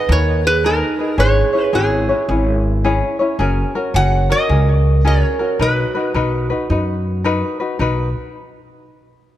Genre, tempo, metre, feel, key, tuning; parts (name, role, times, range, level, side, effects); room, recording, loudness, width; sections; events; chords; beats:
Hawaiian; 109 BPM; 4/4; swing 64% on 8ths; B major; A4 = 440 Hz
metal-body resonator slide guitar; melody; 0.0-7.2 s; G#4 to F#5; -20 LUFS; equal; analog delay
vibraphone with medium hard mallets; second line; 0.0-7.2 s; D#4 to C#5; -23 LUFS; right 5 dB
tenor ukulele; accompaniment; 0.0-8.1 s; C#4 to C#5; -20 LUFS; left 2 dB
upright bass; bass; 0.1-8.1 s; F#1 to F#2; -17 LUFS; equal
light reverb; -14 LUFS; side -12 dB against mid
0.0-7.8 A section; 7.8-9.4 B section
0.0 G#madd9; 1.2 C#m/G#; 3.4 F#add9; 5.6 Bmaj7
0.09 0.64 | 1.19 1.74 2.29 2.84 | 3.39 3.94 4.49 5.04 | 5.59 6.15 6.70 7.25 | 7.80